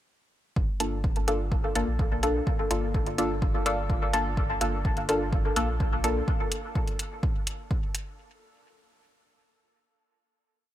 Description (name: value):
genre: dub techno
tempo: 126 BPM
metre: 4/4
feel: straight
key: G minor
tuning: A4 = 440 Hz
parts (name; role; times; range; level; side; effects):
- soft dub sub bass; bass; 0.6-6.2 s; G1 to Bb1; -32 LUFS; equal; tube saturation, sidechain pumping
- electronic kick drum; drums; 0.6-7.8 s; none; -28 LUFS; equal; none
- filtered dub chord stab; stabs; 0.8-6.2 s; Bb3 to A4; -28 LUFS; left 1 dB; chorus, phaser, sidechain pumping, dub echo
- electronic hi-hat; drums; 0.8-8.0 s; none; -33 LUFS; equal; overdrive
room: light reverb, digital ambience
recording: none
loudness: -25 LUFS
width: side -13 dB against mid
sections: 0.6-8.2 groove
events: none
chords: 0.6 Gm7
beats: | 0.56 1.04 1.52 1.99 | 2.47 2.95 3.42 3.90 | 4.37 4.85 5.33 5.80 | 6.28 6.75 7.23 7.71